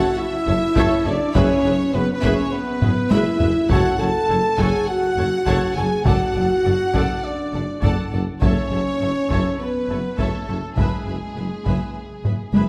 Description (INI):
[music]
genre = cinematic, epic orchestral film score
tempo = 102 BPM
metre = 4/4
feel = straight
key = unclear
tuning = A4 = 441 Hz
[part]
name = bright symphonic violin section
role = melody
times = 0.0-12.7 s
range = G#4 to A5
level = -34 LUFS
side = equal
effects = none
[part]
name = clear symphonic violin section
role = second line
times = 0.0-12.7 s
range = E5 to B5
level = -35 LUFS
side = equal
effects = none
[part]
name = rich symphonic viola section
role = accompaniment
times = 0.0-12.7 s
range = G#4 to D5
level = -33 LUFS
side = equal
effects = none
[part]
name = mellow French horn section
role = sustained chords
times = 0.0-12.7 s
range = G#3 to A4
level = -25 LUFS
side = equal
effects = none
[part]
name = mellow trumpet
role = stabs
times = 0.0-12.7 s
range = G#4 to A5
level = -30 LUFS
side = equal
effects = none
[part]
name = bright symphonic double bass section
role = bass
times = 0.5-12.6 s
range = F#1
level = -30 LUFS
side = equal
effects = none
[part]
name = clear symphonic cello section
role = bass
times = 0.5-12.6 s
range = F#2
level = -30 LUFS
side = equal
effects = none
[part]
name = mellow tuba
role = bass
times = 0.5-12.7 s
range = F#1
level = -31 LUFS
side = equal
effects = none
[part]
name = solo taiko drums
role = drums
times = 0.5-12.7 s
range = none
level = -25 LUFS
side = equal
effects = none
[sound]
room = wet scoring stage reverb, RT60 1.6 s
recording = none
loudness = -20 LUFS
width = mono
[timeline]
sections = 0.0-12.7 A section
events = drum fill 2.8-3.7, 12.2-12.7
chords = 0.0 A; 1.4 E/F#; 3.7 F#m; 6.1 D/F#; 8.4 A/F#; 10.8 E/F#